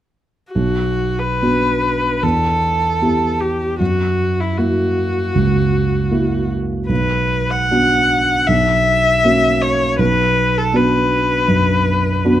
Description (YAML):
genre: classical, romantic duo for viola and grand piano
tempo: 76 BPM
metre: 4/4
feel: uneven beats, rubato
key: B minor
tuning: A4 = 440 Hz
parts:
  - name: clear viola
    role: melody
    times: 0.5-12.4 s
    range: E4 to F#5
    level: -17 LUFS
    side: left 2 dB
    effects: none
  - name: dark grand piano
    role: accompaniment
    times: 0.6-12.4 s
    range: B1 to G4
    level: -17 LUFS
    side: right 1 dB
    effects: none
room: moderate recital hall reverb, RT60 1.3 s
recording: close, detailed microphones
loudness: -14 LUFS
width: side -12 dB against mid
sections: 0.5-12.4 A section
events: none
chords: 0.5 Bm; 2.2 Em; 3.8 F#7; 6.9 Bm; 8.5 F#7/B; 10.0 Bm